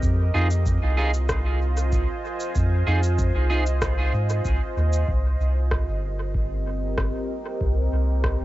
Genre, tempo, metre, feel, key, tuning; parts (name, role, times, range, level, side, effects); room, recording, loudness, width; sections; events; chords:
ambient dub; 95 BPM; 4/4; straight; C minor; A4 = 441 Hz
deep dark ambient pad; sustained chords; 0.0-8.4 s; C4 to Ab5; -30 LUFS; right 1 dB; chorus, built-in reverb, cassette tape
soft dub sub bass; bass; 0.0-8.4 s; G1 to Ab2; -22 LUFS; equal; tube saturation
electronic cabasa and rim click; drums; 0.0-8.4 s; -32 LUFS; equal; cassette tape, dub echo
electronic kick drum; drums; 0.0-8.4 s; -27 LUFS; equal; cassette tape
clean electric guitar; stabs; 0.3-3.6 s; Eb4 to Ab4; -30 LUFS; right 2 dB; analog chorus, cassette tape, dub echo
little or no reverb; home recording on cassette, nothing above 7.7 kHz; -21 LUFS; side -16 dB against mid
0.0-5.1 A section; 5.1-8.4 B section
0.0 Fm7; 5.1 Cm7